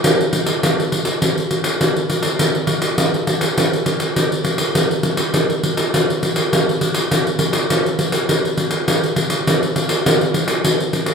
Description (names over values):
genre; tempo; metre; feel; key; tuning
samba; 102 BPM; 4/4; straight; none; none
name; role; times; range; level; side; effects
pandeiro; percussion; 0.0-11.1 s; none; -15 LUFS; equal; none
room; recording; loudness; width
moderate studio reverb, RT60 0.7 s; minimal, uncompressed stereo recording; -15 LUFS; side -6 dB against mid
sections
0.0-11.1 A section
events
none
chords
none